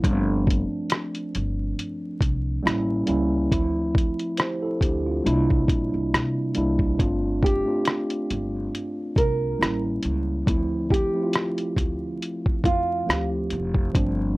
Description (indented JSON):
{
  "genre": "lo-fi hip hop",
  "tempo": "69 BPM",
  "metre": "4/4",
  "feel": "swing 55% on 16ths",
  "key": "D minor",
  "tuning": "A4 = 440 Hz",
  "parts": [
    { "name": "mellow tine electric piano", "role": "accompaniment", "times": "0.0-14.4 s", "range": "E3 to C5", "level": "-26 LUFS", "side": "equal", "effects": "slow stereo tremolo, cassette tape, low-pass filter" },
    { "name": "upright bass", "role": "bass", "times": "0.0-14.4 s", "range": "F1 to C3", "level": "-27 LUFS", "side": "equal", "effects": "transformer saturation" },
    { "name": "lo-fi sampler-style drum kit", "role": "drums", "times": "0.0-14.2 s", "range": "hi-hat, kick drum, rim click", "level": "-23 LUFS", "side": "equal", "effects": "none" },
    { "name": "nylon-string guitar", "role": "melody", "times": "7.4-13.3 s", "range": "F4 to Bb4", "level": "-26 LUFS", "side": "right 1 dB", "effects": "low-pass filter" }
  ],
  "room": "light reverb",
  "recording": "dry, gritty hardware recording, vinyl crackle",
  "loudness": "-22 LUFS",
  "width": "side -21 dB against mid",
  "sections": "0.0-7.0 A section; 7.0-14.4 B section",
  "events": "none",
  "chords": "0.0 G7sus4; 2.6 A7b9; 3.5 Dm9; 5.3 C9; 7.0 G7sus4; 9.6 A7b9; 10.5 Dm9",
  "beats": "| 0.04 0.90 1.77 2.64 | 3.51 4.38 5.25 6.12 | 6.99 7.86 8.73 9.60 | 10.47 11.34 12.21 13.08 | 13.95"
}